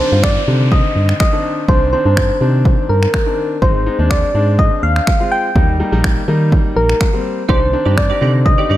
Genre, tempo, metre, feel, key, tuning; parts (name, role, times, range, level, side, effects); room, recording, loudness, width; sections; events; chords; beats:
dance-pop; 124 BPM; 4/4; straight; C minor; A4 = 436 Hz
soft struck synth lead; melody; 0.0-8.8 s; Bb4 to G5; -18 LUFS; left 1 dB; chorus, ping-pong delay
clear grand piano; accompaniment; 0.0-8.8 s; D3 to F4; -21 LUFS; left 2 dB; sidechain pumping
downlifter; sound effects; 0.0-3.6 s; -28 LUFS; equal
organ-like FM bass; bass; 0.1-8.8 s; Ab1 to Eb3; -15 LUFS; equal; sidechain pumping
punchy analog drum machine; drums; 0.2-8.6 s; finger snaps, kick drum; -16 LUFS; equal
direct-recorded clean electric guitar; riff; 7.5-8.8 s; Eb4 to D5; -22 LUFS; right 7 dB; ensemble chorus
digital ambience; -12 LUFS; side -14 dB against mid
0.0-8.8 A section
0.0 Cmadd9; 3.6 Ab; 5.6 Eb; 7.5 Cmadd9
0.23 0.72 1.20 | 1.69 2.17 2.65 3.14 | 3.62 4.11 4.59 5.07 | 5.56 6.04 6.52 7.01 | 7.49 7.98 8.46